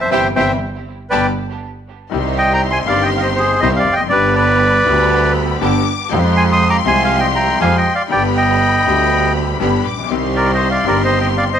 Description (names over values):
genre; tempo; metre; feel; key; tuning
tango; 120 BPM; 4/4; rubato; C minor; A4 = 440 Hz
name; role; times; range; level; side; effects
bandoneon; melody; 0.0-11.6 s; Ab4 to Eb6; -15 LUFS; equal; none
clear studio violin section; second line; 0.0-11.6 s; E5 to D6; -24 LUFS; left 9 dB; none
bright concert grand piano; accompaniment; 0.0-11.6 s; G1 to G4; -21 LUFS; left 10 dB; none
clear double bass; bass; 0.0-11.6 s; F1 to F2; -19 LUFS; right 2 dB; none
rich symphonic string section; stabs; 0.1-11.6 s; D3 to G4; -23 LUFS; right 9 dB; tape echo
room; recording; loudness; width
moderate echo chamber reverb, RT60 1.3 s; 1960s-style stereo with parts hard left and right; -12 LUFS; side -8 dB against mid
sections
0.0-2.1 A section; 2.1-11.6 B section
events
band accent 0.1-2.1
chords
0.1 C/G; 1.1 G; 2.1 Cm; 4.1 G; 6.1 Fmadd9; 8.1 G; 10.1 Cm